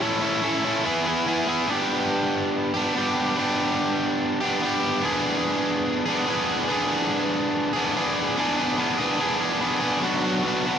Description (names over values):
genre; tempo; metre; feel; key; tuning
rock; 144 BPM; 4/4; straight; unclear; A4 = 441 Hz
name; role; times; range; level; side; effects
crunchy overdriven guitar; solo; 0.0-10.8 s; F#3 to A4; -21 LUFS; equal; tape echo
room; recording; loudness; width
moderate studio ambience, RT60 0.5 s; none; -21 LUFS; side -8 dB against mid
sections
0.0-1.7 A section; 1.7-8.4 B section; 8.4-10.8 C section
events
none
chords
0.0 A; 0.9 E; 1.7 G; 5.0 Bm6; 10.0 Bm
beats
| 0.03 0.45 0.86 1.28 | 1.70 2.11 2.53 2.95 | 3.36 3.78 4.20 4.62 | 5.03 5.45 5.87 6.28 | 6.70 7.12 7.54 7.95 | 8.37 8.78 9.20 9.62 | 10.03 10.45